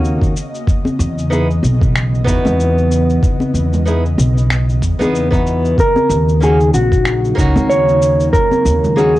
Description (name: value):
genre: sunset chillout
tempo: 94 BPM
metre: 4/4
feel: swing 57% on 16ths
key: C# dorian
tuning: A4 = 440 Hz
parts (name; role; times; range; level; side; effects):
- flamenco guitar; accompaniment; 0.0-9.1 s; A#3 to G#4; -20 LUFS; left 1 dB; auto-pan, low-pass filter, cassette tape, analog delay
- ethereal airy pad; sustained chords; 0.0-9.2 s; C#3 to D#5; -22 LUFS; equal; ensemble chorus, built-in reverb, cassette tape
- upright bass; bass; 0.0-9.2 s; A#1 to E2; -15 LUFS; equal; none
- electronic cabasa and finger snaps; drums; 0.0-9.2 s; none; -25 LUFS; left 1 dB; cassette tape
- electronic kick drum; drums; 0.2-8.5 s; none; -15 LUFS; equal; cassette tape
- congas; percussion; 0.8-8.9 s; none; -22 LUFS; left 1 dB; none
- mellow electric guitar; melody; 5.8-9.2 s; F#4 to C#5; -14 LUFS; equal; cassette tape, plate reverb
room: moderate studio reverb, RT60 0.6 s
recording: home recording on cassette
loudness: -12 LUFS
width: side -16 dB against mid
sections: 0.0-9.2 A section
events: none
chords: 0.4 C#m9; 5.8 D#m7